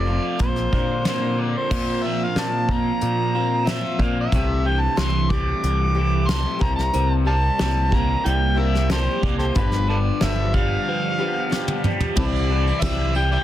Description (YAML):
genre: folk rock and heartland rock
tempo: 92 BPM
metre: 4/4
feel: straight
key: C mixolydian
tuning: A4 = 444 Hz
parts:
  - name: overdriven harmonica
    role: melody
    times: 0.0-13.4 s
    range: G4 to D6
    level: -25 LUFS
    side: equal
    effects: none
  - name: picked swing-style acoustic guitar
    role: accompaniment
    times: 0.0-13.4 s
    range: G2 to D5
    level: -30 LUFS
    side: left 6 dB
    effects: none
  - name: crunchy overdriven guitar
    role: riff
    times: 0.0-13.4 s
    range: F2 to A4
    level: -26 LUFS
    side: right 1 dB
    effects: phaser
  - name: modern bright picked electric bass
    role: bass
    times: 0.0-13.4 s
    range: F1 to Bb2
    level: -22 LUFS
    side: equal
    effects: none
  - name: soft brush drum kit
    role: drums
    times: 0.4-13.0 s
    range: crash cymbal, hi-hat, kick drum, ride cymbal, snare drum, toms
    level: -24 LUFS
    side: equal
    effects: soft clipping on kick
  - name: warm upright piano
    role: accompaniment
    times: 6.9-13.2 s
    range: E4 to D5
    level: -35 LUFS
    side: right 4 dB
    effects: none
  - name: tambourine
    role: percussion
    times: 12.2-13.4 s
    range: none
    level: -43 LUFS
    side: right 11 dB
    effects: none
room: light reverb, studio reverb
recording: dense, heavily limited modern master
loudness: -19 LUFS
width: side -12 dB against mid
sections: 0.0-1.7 A section; 1.7-12.2 B section; 12.2-13.4 C section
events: break 10.9-12.2; drum fill 11.5-12.2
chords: 0.4 Bbadd9; 1.7 Bbsus2; 4.3 Am7/C; 6.6 C7; 9.6 G7; 12.2 Cadd9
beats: 0.41 1.06 | 1.72 2.37 3.02 3.68 | 4.33 4.99 5.64 6.29 | 6.95 7.60 8.25 8.91 | 9.56 10.21 10.87 11.52 | 12.18 12.83